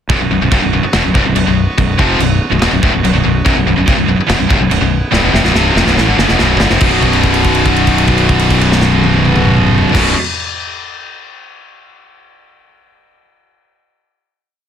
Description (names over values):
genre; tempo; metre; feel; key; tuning
heavy metal; 143 BPM; 4/4; straight; unclear; A4 = 440 Hz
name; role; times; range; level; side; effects
pipe organ, clarinet reed; sustained chords; 0.1-10.1 s; B3 to B4; -25 LUFS; right 2 dB; none
scooped high-gain guitar; riff; 0.1-10.1 s; B1 to E#3; -16 LUFS; right 9 dB; distortion
tight distorted guitar; riff; 0.1-10.1 s; B1 to E#3; -16 LUFS; left 9 dB; distortion
tight distorted guitar; riff; 0.1-10.1 s; B1 to E#3; -18 LUFS; equal; distortion
fuzz fingered electric bass; bass; 0.1-10.1 s; B0 to A1; -16 LUFS; equal; overdrive
modern studio drum kit; drums; 0.1-10.0 s; china cymbal, crash cymbal, kick drum, snare drum, toms; -17 LUFS; equal; none
room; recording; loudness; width
light reverb; dense, heavily limited modern master; -9 LUFS; side -8 dB against mid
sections
0.1-6.8 riff; 6.8-10.2 final chord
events
drum fill 5.1-6.8; held note 6.8-9.9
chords
0.1 Bm; 6.8 B5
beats
| 0.10 0.52 0.94 1.36 | 1.78 2.20 2.62 3.04 | 3.46 3.88 4.30 4.72 | 5.14 5.56 5.97 6.40 | 6.82 7.24 7.66 8.08 | 8.50 8.92 9.35 9.77